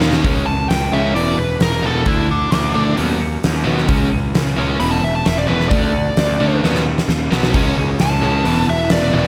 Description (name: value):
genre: hard rock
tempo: 132 BPM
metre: 4/4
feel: straight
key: E mixolydian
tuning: A4 = 440 Hz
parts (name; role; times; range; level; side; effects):
- overdriven tonewheel organ; sustained chords; 0.0-0.3, 7.5-9.3 s; G#3 to F#5; -34 LUFS; equal; none
- biting overdriven guitar; riff; 0.0-0.2, 7.5-9.3 s; E2 to D#4; -27 LUFS; equal; none
- high-gain distorted guitar; riff; 0.0-9.3 s; E2 to D#4; -28 LUFS; equal; distortion, slapback echo
- overdriven semi-hollow guitar; riff; 0.0-9.3 s; E2 to D#4; -24 LUFS; equal; none
- fuzz picked electric bass; bass; 0.0-9.3 s; E1 to D#2; -22 LUFS; equal; overdrive
- huge arena drum kit; drums; 0.0-9.3 s; hi-hat, kick drum, snare drum; -22 LUFS; equal; none
- nasal lead guitar with a parked wah; melody; 0.5-9.3 s; D4 to B5; -23 LUFS; equal; overdrive, slapback echo
room: moderate lush hall reverb, RT60 1.6 s, small room ambience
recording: big arena sound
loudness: -17 LUFS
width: mono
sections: 0.2-9.3 A section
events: drum fill 0.0, 6.6-7.5; lead electric guitar solo 0.2-9.3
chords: 0.2 C#5; 1.2 E5; 2.1 D5; 3.0 B/D#; 3.9 C#5; 4.8 E5; 5.7 D5; 6.6 B/D#; 7.5 C#5; 8.5 Esus2